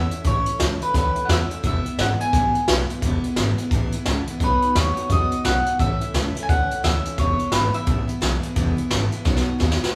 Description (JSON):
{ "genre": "rockabilly", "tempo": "173 BPM", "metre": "4/4", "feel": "swing 62% on 8ths", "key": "E major", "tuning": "A4 = 441 Hz", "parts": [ { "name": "electric guitar at the edge of break-up", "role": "melody", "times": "0.0-8.4 s", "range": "B4 to G#5", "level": "-26 LUFS", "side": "equal", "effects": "none" }, { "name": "picked steel-string acoustic guitar", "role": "accompaniment", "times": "0.0-10.0 s", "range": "E2 to F#4", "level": "-30 LUFS", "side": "equal", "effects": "none" }, { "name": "upright bass", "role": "bass", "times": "0.0-9.9 s", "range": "E1 to E2", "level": "-26 LUFS", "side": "equal", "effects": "none" }, { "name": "jazz brush drum kit", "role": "drums", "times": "0.1-9.9 s", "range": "hi-hat, kick drum, snare drum", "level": "-26 LUFS", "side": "equal", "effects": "none" } ], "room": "wet large studio reverb, RT60 1.1 s", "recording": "band playing live in one room", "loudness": "-21 LUFS", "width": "mono", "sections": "0.0-10.0 A section", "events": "drum fill 9.3-10.0", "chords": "0.0 A; 1.6 E; 4.4 B; 5.8 A; 7.2 E; 9.3 B" }